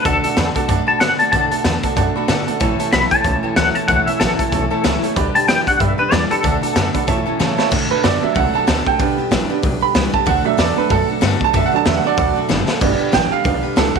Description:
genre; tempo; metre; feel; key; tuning
rockabilly; 188 BPM; 4/4; swing 59% on 8ths; D major; A4 = 442 Hz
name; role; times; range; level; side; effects
twangy electric guitar; melody; 0.0-7.2 s; A4 to B5; -18 LUFS; left 3 dB; tremolo, tape echo
bright upright piano; accompaniment; 0.0-14.0 s; F#3 to C#6; -20 LUFS; right 13 dB; none
picked steel-string acoustic guitar; accompaniment; 0.0-14.0 s; A2 to B4; -23 LUFS; left 15 dB; none
electric guitar through a small old amp; riff; 0.0-14.0 s; G2 to B3; -24 LUFS; right 14 dB; none
upright bass; bass; 0.1-14.0 s; F#1 to C#3; -23 LUFS; left 1 dB; none
raw garage drum kit; drums; 0.1-14.0 s; crash cymbal, hi-hat, kick drum, snare drum; -20 LUFS; left 1 dB; none
room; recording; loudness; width
light reverb, studio reverb; 1960s-style stereo with parts hard left and right; -14 LUFS; side -5 dB against mid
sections
0.0-7.7 A section; 7.7-14.0 B section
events
upright piano fill 7.2-7.7; drum fill 7.4-7.7, 12.5-12.8; upright piano solo 7.7-14.0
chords
0.0 D; 2.6 A; 5.2 G; 6.4 D; 7.1 A; 7.7 D; 9.0 G; 10.3 D; 12.8 G

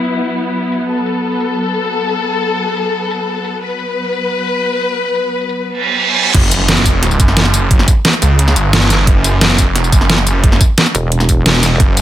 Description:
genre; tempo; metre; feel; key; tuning
dark technical drum and bass; 176 BPM; 4/4; straight; F# phrygian; A4 = 440 Hz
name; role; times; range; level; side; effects
warm studio string section; sustained chords; 0.0-6.3 s; F#3 to B4; -16 LUFS; left 2 dB; sidechain pumping
dubstep drum kit; drums; 0.0-12.0 s; crash cymbal, hi-hat, snare drum, tambourine; -14 LUFS; equal; low-pass filter on perc, low-pass filter on hats, low-pass filter on cymbals, low-pass filter on snare, low-pass filter on room
reverse cymbal and impact; sound effects; 5.8-7.7 s; none; -16 LUFS; right 4 dB; none
snarling distorted saw bass; bass; 6.3-12.0 s; F#1 to C#2; -12 LUFS; right 1 dB; distortion, overdrive
electronic kick drum; drums; 6.3-11.9 s; none; -11 LUFS; equal; none
pulsing pluck wobble bass; bass; 10.9-11.8 s; E1; -13 LUFS; equal; chorus
room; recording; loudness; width
light reverb; low-pass filter; -11 LUFS; side -12 dB against mid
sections
0.0-6.3 A section; 6.3-12.0 B section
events
filter sweep 0.0-6.3; reverse cymbal 5.8-6.3; drop 6.3-12.0; impact 6.3-7.7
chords
0.0 F#m; 6.3 F#5

